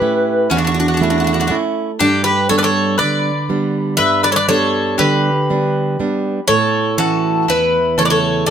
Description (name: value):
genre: greek folk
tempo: 120 BPM (eighths)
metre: 9/8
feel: straight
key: unclear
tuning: A4 = 440 Hz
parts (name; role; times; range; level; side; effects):
- Greek bouzouki; melody; 0.0-8.5 s; F#4 to E5; -17 LUFS; equal; none
- mandolin; second line; 0.0-8.5 s; C#4 to B4; -19 LUFS; left 4 dB; none
- flamenco guitar; accompaniment; 0.0-8.5 s; E2 to E4; -18 LUFS; right 4 dB; none
room: moderate studio reverb, RT60 0.6 s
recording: none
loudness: -13 LUFS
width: side -8 dB against mid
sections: 0.0-8.5 A section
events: none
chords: 0.0 A; 2.0 G; 6.5 A